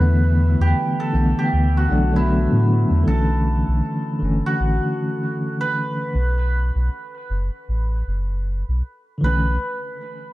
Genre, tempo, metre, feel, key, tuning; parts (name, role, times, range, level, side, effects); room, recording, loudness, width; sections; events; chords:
trip hop; 78 BPM; 4/4; swing 59% on 16ths; B minor; A4 = 440 Hz
cimbalom; melody; 0.0-9.5 s; E4 to B4; -27 LUFS; right 1 dB; tape echo
tine electric piano; accompaniment; 0.0-9.5 s; D3 to D4; -21 LUFS; equal; tremolo, tape echo
string machine, cellos; sustained chords; 0.0-3.1 s; E3 to E4; -34 LUFS; left 1 dB
soft dub sub bass; bass; 0.0-9.6 s; F#1 to A2; -19 LUFS; equal; tube saturation
digital ambience; -18 LUFS; side -17 dB against mid
0.0-3.1 A section; 3.1-9.2 B section; 9.2-10.3 C section
filter sweep on sub bass 3.1-9.2
0.0 E7sus4; 3.1 Bm11